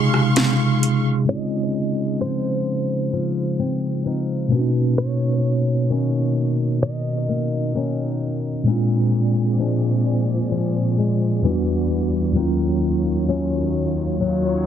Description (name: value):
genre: contemporary R&B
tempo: 65 BPM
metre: 4/4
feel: straight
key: Db major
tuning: A4 = 438 Hz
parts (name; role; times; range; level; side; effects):
- direct-recorded clean electric guitar; melody; 0.0-8.2 s; C5 to Eb5; -29 LUFS; right 1 dB; digital delay
- mellow tine electric piano; accompaniment; 0.0-14.7 s; Eb2 to Ab4; -20 LUFS; right 1 dB; medium stereo tremolo
- warm studio string section; sustained chords; 0.0-1.2, 8.7-14.7 s; Eb2 to Db6; -27 LUFS; right 2 dB; none
- flamenco guitar; arpeggios; 0.0-14.7 s; Bb2 to F4; -24 LUFS; left 4 dB; none
- trap drum kit; drums; 0.1-1.0 s; hi-hat, rim click, snare drum; -22 LUFS; right 1 dB; overdrive
room: light reverb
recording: dense, heavily limited modern master, low-pass filter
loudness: -18 LUFS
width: side -9 dB against mid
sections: 0.0-1.3 A section; 1.3-14.7 B section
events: break 0.0-1.3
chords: 0.0 Dbmaj7; 1.3 Dbmaj9; 4.5 Cbmaj9; 8.7 Bb7; 11.4 Em9; 12.4 Ebm9